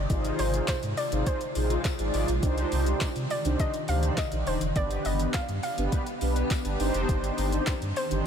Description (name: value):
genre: dance-pop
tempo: 103 BPM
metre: 4/4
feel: straight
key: C minor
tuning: A4 = 440 Hz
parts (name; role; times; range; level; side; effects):
- hollow square pluck; melody; 0.0-8.3 s; C5 to F5; -34 LUFS; equal; chorus, ping-pong delay
- granular cloud pad; sustained chords; 0.0-8.3 s; C3 to D5; -34 LUFS; equal; built-in reverb, wide subtle chorus, sidechain pumping
- warm sub bass; bass; 0.0-8.2 s; Eb1 to C3; -29 LUFS; equal; sidechain pumping
- mellow synth brass; accompaniment; 0.1-8.3 s; B3 to D5; -31 LUFS; equal; chorus, sidechain pumping
- smooth R&B drum kit; drums; 0.1-8.2 s; handclaps, hi-hat, kick drum, shaker, snare drum; -32 LUFS; equal; none
- tambourine; percussion; 0.7-7.8 s; none; -51 LUFS; left 9 dB; none
room: moderate huge ambient reverb, RT60 6.7 s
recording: dreamy mix soaked in reverb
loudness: -25 LUFS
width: side -8 dB against mid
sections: 0.0-8.3 A section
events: none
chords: 0.1 Ab6; 2.4 Cmadd9; 4.8 G; 6.8 Cmadd9